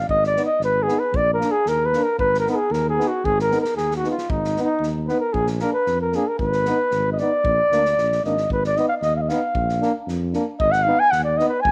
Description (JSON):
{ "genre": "balkan folk, Balkan brass band", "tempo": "114 BPM", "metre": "2/4", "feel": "straight", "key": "Ab dorian sharp4", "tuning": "A4 = 439 Hz", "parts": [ { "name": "mellow flugelhorn", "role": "melody", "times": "0.0-11.7 s", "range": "Eb4 to Ab5", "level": "-22 LUFS", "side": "equal", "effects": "none" }, { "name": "dark tuba", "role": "bass", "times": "0.0-11.7 s", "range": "Ab1 to F2", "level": "-28 LUFS", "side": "equal", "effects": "none" }, { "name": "unplugged drum kit", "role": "percussion", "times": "0.1-11.7 s", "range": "kick drum, snare drum", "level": "-34 LUFS", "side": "equal", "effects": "none" }, { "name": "clear euphonium", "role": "accompaniment", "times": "0.4-11.5 s", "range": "D4 to Eb4", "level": "-32 LUFS", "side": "equal", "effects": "none" }, { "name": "clear trombone", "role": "accompaniment", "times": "0.4-11.5 s", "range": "Bb3 to Cb4", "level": "-31 LUFS", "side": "equal", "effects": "none" } ], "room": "moderate plate reverb, RT60 1.1 s, small room ambience", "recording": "none", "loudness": "-21 LUFS", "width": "mono", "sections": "0.0-11.7 A section", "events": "flugelhorn solo 0.0-11.7", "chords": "0.1 Abm; 1.1 Bb; 2.2 Abm; 5.4 Bb; 6.4 Abm; 7.5 Bb; 8.5 Abm; 9.6 Bb; 10.6 Abm" }